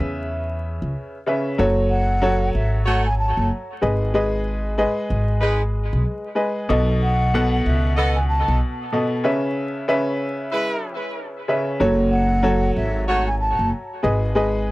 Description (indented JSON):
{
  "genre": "hip hop",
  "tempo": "94 BPM",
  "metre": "4/4",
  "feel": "swing 58% on 16ths",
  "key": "C# minor",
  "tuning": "A4 = 439 Hz",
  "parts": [
    { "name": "clear upright piano", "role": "accompaniment", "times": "0.0-14.7 s", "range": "B2 to F#5", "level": "-22 LUFS", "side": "equal", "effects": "cassette tape, high-pass filter, low-pass filter" },
    { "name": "upright bass", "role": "bass", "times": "0.0-14.7 s", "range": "F#1 to E2", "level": "-21 LUFS", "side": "equal", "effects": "none" },
    { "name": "breathy concert flute", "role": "melody", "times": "1.9-13.7 s", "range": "E5 to A5", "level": "-25 LUFS", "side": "equal", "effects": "high-pass filter, low-pass filter, tape echo" },
    { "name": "mellow horn section", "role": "stabs", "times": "2.9-13.3 s", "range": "G#3 to D#5", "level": "-26 LUFS", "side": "equal", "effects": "high-pass filter, low-pass filter, tape echo" }
  ],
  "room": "little or no reverb",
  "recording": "dry, gritty hardware recording, vinyl crackle",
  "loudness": "-18 LUFS",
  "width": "side -19 dB against mid",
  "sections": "0.0-1.6 A section; 1.6-14.7 B section",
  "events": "break 9.2-11.8",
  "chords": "0.0 C#m7; 1.6 F#m; 3.8 G#m; 6.7 B7; 9.2 C#m7; 11.8 F#m; 14.0 G#m"
}